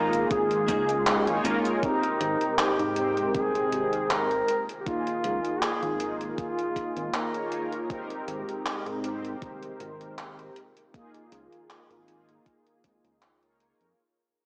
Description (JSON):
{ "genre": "vaporwave", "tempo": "79 BPM", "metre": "4/4", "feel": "swing 54% on 16ths", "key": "unclear", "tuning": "A4 = 441 Hz", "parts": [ { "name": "mellow flugelhorn", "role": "melody", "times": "0.0-7.7 s", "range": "Eb4 to Bb4", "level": "-31 LUFS", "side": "equal", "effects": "analog delay" }, { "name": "mellow synth brass", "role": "accompaniment", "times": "0.0-14.0 s", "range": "Ab3 to G5", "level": "-33 LUFS", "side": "equal", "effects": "analog chorus, vintage 12-bit sampler grit, analog delay" }, { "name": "clean electric guitar", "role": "riff", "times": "0.0-1.7 s", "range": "Bb3 to Ab4", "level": "-38 LUFS", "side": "equal", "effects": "none" }, { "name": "chorused synth bass", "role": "bass", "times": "0.0-13.9 s", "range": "Eb1 to Ab2", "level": "-39 LUFS", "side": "equal", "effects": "none" }, { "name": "gated 80s digital drum machine", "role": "drums", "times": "0.1-13.9 s", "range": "cabasa, handclaps, hi-hat", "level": "-33 LUFS", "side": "equal", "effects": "gated reverb, overdrive" }, { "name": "electronic kick drum", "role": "drums", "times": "0.3-13.0 s", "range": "none", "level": "-37 LUFS", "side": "equal", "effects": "overdrive" }, { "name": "soft string machine", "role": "sustained chords", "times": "1.8-13.9 s", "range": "C3 to G5", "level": "-44 LUFS", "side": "equal", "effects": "ensemble chorus, vintage 12-bit sampler grit" } ], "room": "moderate lush hall reverb, RT60 2.9 s", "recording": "small speaker sound", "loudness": "-28 LUFS", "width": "mono", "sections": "0.0-1.8 A section; 1.8-14.0 B section", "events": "fade-out 1.8-14.0", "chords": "0.0 Db69; 1.8 Abmaj7; 4.5 Db69; 7.9 Abmaj7; 10.6 Db69", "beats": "0.30 1.06 | 1.82 2.58 3.34 4.10 | 4.86 5.62 6.38 7.14 | 7.90 8.66 9.42 10.18 | 10.94 11.70 12.46 13.22" }